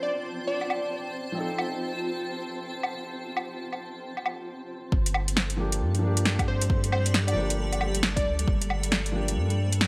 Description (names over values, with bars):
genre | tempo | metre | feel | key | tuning
future garage | 135 BPM | 4/4 | swing 62% on 16ths | G minor | A4 = 438 Hz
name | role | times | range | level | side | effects
plucky unison lead | melody | 0.0-1.1, 6.5-8.5 s | C5 to D5 | -35 LUFS | equal | digital delay
felt-muted upright piano | accompaniment | 0.0-9.6 s | F3 to A4 | -38 LUFS | equal | sidechain pumping, delay
granular cloud pad | sustained chords | 0.0-9.9 s | G3 to A5 | -38 LUFS | equal | built-in reverb, analog chorus, sidechain pumping
flickering grainy texture | texture | 0.0-9.9 s | A3 to C5 | -44 LUFS | equal | built-in reverb
deep house drum kit | drums | 0.6-9.9 s | hi-hat, snare drum, woodblock | -30 LUFS | equal | overdrive, studio ambience
warm sub bass | bass | 4.9-9.9 s | G1 to G2 | -30 LUFS | equal | sidechain pumping
electronic kick drum | drums | 4.9-8.6 s | none | -29 LUFS | equal | overdrive, studio ambience
room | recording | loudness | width
light reverb | bright 1980s-style digital production | -28 LUFS | mono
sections
0.0-4.9 A section; 4.9-9.9 B section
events
none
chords
0.0 F7; 4.9 Gm7